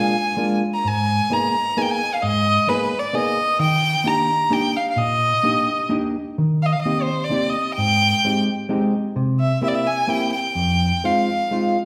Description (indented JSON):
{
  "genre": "musette waltz",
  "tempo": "130 BPM",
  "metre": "3/4",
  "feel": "rubato",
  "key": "Eb major",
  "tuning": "A4 = 440 Hz",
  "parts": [
    { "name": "clear violin", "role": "melody", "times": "0.0-11.8 s", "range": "Cb5 to Bb5", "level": "-22 LUFS", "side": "equal", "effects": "none" },
    { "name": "hollow-body jazz guitar", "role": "accompaniment", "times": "0.0-11.8 s", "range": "F2 to Ab4", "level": "-24 LUFS", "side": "equal", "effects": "none" }
  ],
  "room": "wet recital hall reverb, RT60 1.3 s",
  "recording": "recorded in a church or concert hall",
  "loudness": "-20 LUFS",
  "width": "mono",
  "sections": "0.0-6.4 A section; 6.4-11.8 B section",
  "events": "none",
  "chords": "0.0 Bb7; 0.8 Abmadd9; 3.6 Ebmaj7; 6.4 Eb6; 7.8 Abmaj7; 9.2 C7; 10.6 Fm7"
}